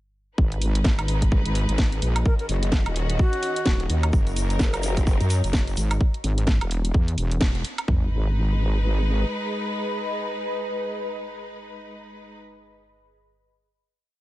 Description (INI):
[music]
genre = bass house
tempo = 128 BPM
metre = 4/4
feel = swing 59% on 16ths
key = G# minor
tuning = A4 = 440 Hz
[part]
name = clear symphonic string section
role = sustained chords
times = 0.4-12.4 s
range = D#3 to B4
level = -33 LUFS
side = equal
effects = sidechain pumping
[part]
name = wobble bass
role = bass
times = 0.4-9.2 s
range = D#1 to F#2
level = -23 LUFS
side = equal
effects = chorus, tube saturation, sidechain pumping
[part]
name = garage drum kit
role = drums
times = 0.4-8.0 s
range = kick drum, toms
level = -21 LUFS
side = equal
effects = none
[part]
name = ethereal airy pad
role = texture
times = 1.1-12.4 s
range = F#4 to B5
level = -34 LUFS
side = left 1 dB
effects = ensemble chorus, built-in reverb, phaser, sidechain pumping
[part]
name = garage drum kit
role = drums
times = 0.5-7.9 s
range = hi-hat, snare drum, woodblock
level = -29 LUFS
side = right 1 dB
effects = none
[part]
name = mellow hollow jazz flute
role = melody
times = 2.3-3.9 s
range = F#4 to A#4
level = -30 LUFS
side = left 2 dB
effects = tape echo
[part]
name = egg shaker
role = percussion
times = 4.1-6.0 s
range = none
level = -38 LUFS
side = left 2 dB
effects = none
[part]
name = growl bass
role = bass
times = 4.6-5.2 s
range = F#1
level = -26 LUFS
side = equal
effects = chorus, overdrive, sidechain pumping
[sound]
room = digital ambience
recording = nothing above 10.5 kHz, faint mains hum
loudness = -21 LUFS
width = side -16 dB against mid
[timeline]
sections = 0.4-7.9 drop; 7.9-11.6 final chord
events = drop 0.4-7.9; band accent 7.4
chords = 0.4 G#m; 2.3 D#m7; 4.1 F#6; 6.0 E; 7.9 G#m